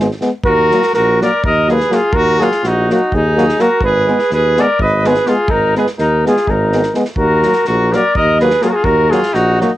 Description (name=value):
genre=balkan folk, Balkan brass band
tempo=250 BPM (eighths)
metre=7/8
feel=straight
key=unclear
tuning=A4 = 440 Hz
part: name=clear trombone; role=accompaniment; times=0.0-9.7 s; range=Gb3 to Ab3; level=-20 LUFS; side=right 3 dB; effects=none
part: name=warm euphonium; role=accompaniment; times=0.0-9.7 s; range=Bb3 to Cb4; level=-18 LUFS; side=left 3 dB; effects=none
part: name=warm tuba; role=bass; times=0.0-9.6 s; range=Ab1 to Eb2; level=-17 LUFS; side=equal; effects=none
part: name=unplugged drum kit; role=percussion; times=0.0-9.7 s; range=kick drum, snare drum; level=-24 LUFS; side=equal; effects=cassette tape
part: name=mellow flugelhorn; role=melody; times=0.5-9.7 s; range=Gb4 to Eb5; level=-14 LUFS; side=equal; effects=cassette tape
part: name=bright trumpet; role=second line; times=0.5-9.7 s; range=Eb4 to Cb5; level=-19 LUFS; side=left 1 dB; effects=none
room=light reverb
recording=home recording on cassette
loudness=-11 LUFS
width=side -14 dB against mid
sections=0.4-9.8 A section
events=none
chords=0.4 Ebm; 3.8 Abm; 7.2 Ebm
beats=0.20 | 0.44 0.68 0.92 1.16 1.40 1.64 1.88 | 2.12 2.37 2.60 2.85 3.09 3.33 3.57 | 3.81 4.05 4.29 4.53 4.77 5.01 5.25 | 5.49 5.73 5.97 6.21 6.45 6.69 6.93 | 7.17 7.41 7.65 7.89 8.13 8.37 8.61 | 8.85 9.09 9.33 9.57